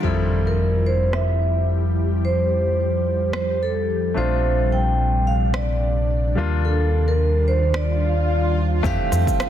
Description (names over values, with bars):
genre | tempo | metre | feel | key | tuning
sunset chillout | 109 BPM | 4/4 | swing 56% on 16ths | F major | A4 = 441 Hz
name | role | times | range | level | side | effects
vibraphone with medium hard mallets | melody | 0.0-9.5 s | A4 to G5 | -24 LUFS | right 2 dB | tape echo
clear baby grand piano | accompaniment | 0.0-9.5 s | E3 to G4 | -29 LUFS | moving between left 6 dB and right 1 dB | auto-pan, tape echo
ethereal airy pad | sustained chords | 0.0-9.5 s | C3 to G4 | -27 LUFS | left 1 dB | ensemble chorus, built-in reverb
fingered electric bass | bass | 0.0-9.2 s | Bb1 to F2 | -20 LUFS | equal | none
deep house drum kit | drums | 0.0-9.5 s | crash cymbal, rim click, shaker | -32 LUFS | equal | overdrive, low-pass filter on perc, low-pass filter on snare, low-pass filter on cymbals
impact and swell | sound effects | 0.0-2.2, 7.9-8.8 s | none | -30 LUFS | equal | none
electronic kick drum | drums | 8.8-9.4 s | none | -24 LUFS | equal | overdrive
room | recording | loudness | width
light reverb, digital ambience | dense, heavily limited modern master | -18 LUFS | side -10 dB against mid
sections
0.0-8.8 A section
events
impact 0.0-2.2; swell 7.9-8.8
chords
0.0 Fmaj9; 4.2 Bbmaj9; 6.4 Ebmaj9; 8.8 Fmaj9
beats
| 0.04 0.58 1.14 1.69 | 2.24 2.79 3.34 3.89 | 4.44 4.99 5.54 6.09 | 6.64 7.19 7.74 8.29 | 8.84 9.39